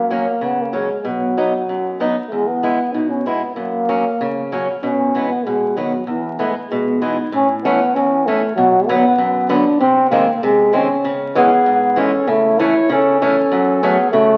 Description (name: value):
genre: alpine folk, alpine dance band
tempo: 97 BPM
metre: 2/4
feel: straight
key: E major, A major from 7.3 s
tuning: A4 = 440 Hz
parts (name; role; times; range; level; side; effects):
- warm euphonium; melody; 0.0-14.4 s; E3 to E4; -18 LUFS; equal; none
- fingerpicked swing-style acoustic guitar; accompaniment; 0.0-14.4 s; E2 to E4; -22 LUFS; equal; none
- warm clarinet; second line; 11.4-14.4 s; E4 to C#5; -24 LUFS; equal; none
room: wet large studio reverb, RT60 1.5 s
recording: very old 78 rpm record, vinyl crackle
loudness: -17 LUFS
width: mono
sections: 0.0-7.3 A section; 7.3-14.4 B section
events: none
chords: 0.0 F#; 1.1 B; 2.3 E; 3.6 F#; 4.8 E/B; 5.5 B; 6.1 E; 7.3 A; 8.6 Bm; 9.8 G#/B#; 11.0 C#m; 12.3 A/C#; 13.5 F#m